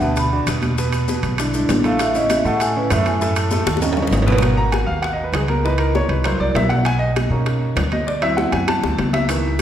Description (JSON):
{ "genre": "Afro-Cuban jazz", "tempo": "197 BPM", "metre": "4/4", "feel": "straight", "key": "G# minor from 4.4 s", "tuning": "A4 = 442 Hz", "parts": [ { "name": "vibraphone with soft mallets", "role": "melody", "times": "0.0-3.8 s", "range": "B4 to B5", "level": "-22 LUFS", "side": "equal", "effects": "none" }, { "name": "clear baby grand piano", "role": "accompaniment", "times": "0.0-9.6 s", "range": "A2 to A#5", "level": "-21 LUFS", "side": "right 1 dB", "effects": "none" }, { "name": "upright bass", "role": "bass", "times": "0.0-9.6 s", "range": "G#1 to B2", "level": "-21 LUFS", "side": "equal", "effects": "none" }, { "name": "congas", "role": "percussion", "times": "0.0-9.6 s", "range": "none", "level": "-27 LUFS", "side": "left 1 dB", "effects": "none" }, { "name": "maracas", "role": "percussion", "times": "0.0-4.4, 9.3-9.6 s", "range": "none", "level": "-33 LUFS", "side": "left 4 dB", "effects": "none" }, { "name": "bongos", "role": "percussion", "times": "0.2-9.6 s", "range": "none", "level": "-28 LUFS", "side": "left 5 dB", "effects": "none" }, { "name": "timbales", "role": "percussion", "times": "0.2-9.6 s", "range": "none", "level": "-27 LUFS", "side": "right 3 dB", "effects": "none" } ], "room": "wet recital hall reverb, RT60 1.7 s", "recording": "recorded in a church or concert hall", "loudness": "-16 LUFS", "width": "side -10 dB against mid", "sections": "0.0-4.4 A section; 4.4-9.6 A section", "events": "vibraphone solo 0.0-4.4; drum fill 3.7-4.4, 8.5-9.3; grand piano solo 4.4-9.6", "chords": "0.0 Gmaj7 (rootless); 0.8 E5; 2.0 A; 3.2 D#dim; 3.8 G#madd11; 4.4 G#m7; 5.6 C#m7; 6.2 C7#11; 6.9 Bmaj7; 8.1 D9", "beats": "0.17 0.47 | 0.77 1.08 1.38 1.69 | 1.99 2.29 2.60 2.90 | 3.21 3.51 3.81 4.12 | 4.42 4.73 5.03 5.33 | 5.64 5.94 6.25 6.55 | 6.86 7.16 7.46 7.77 | 8.07 8.38 8.68 8.99 | 9.29 9.60" }